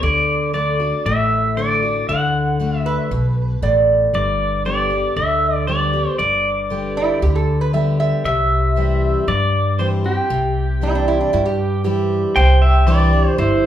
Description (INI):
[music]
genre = country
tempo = 117 BPM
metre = 4/4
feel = straight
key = G major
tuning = A4 = 439 Hz
[part]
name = pedal steel guitar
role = melody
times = 0.0-13.7 s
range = E4 to G5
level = -19 LUFS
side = equal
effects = none
[part]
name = picked steel-string acoustic guitar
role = accompaniment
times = 0.0-13.7 s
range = G2 to G4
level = -22 LUFS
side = left 3 dB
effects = none
[part]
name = upright bass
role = bass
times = 0.0-13.7 s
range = G1 to G2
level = -20 LUFS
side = equal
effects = none
[part]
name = lap resonator guitar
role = second line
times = 2.9-12.2 s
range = D4 to E5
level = -19 LUFS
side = right 4 dB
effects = none
[sound]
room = wet large studio reverb, RT60 0.8 s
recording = band playing live in one room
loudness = -15 LUFS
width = side -11 dB against mid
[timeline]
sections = 0.0-12.4 A section; 12.4-13.7 B section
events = none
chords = 0.0 D; 4.1 G; 8.3 C; 12.4 Cadd9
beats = | 0.03 0.54 1.06 1.57 | 2.08 2.60 3.11 3.63 | 4.14 4.65 5.17 5.68 | 6.20 6.71 7.22 7.74 | 8.25 8.77 9.28 9.79 | 10.31 10.82 11.34 11.85 | 12.36 12.88 13.39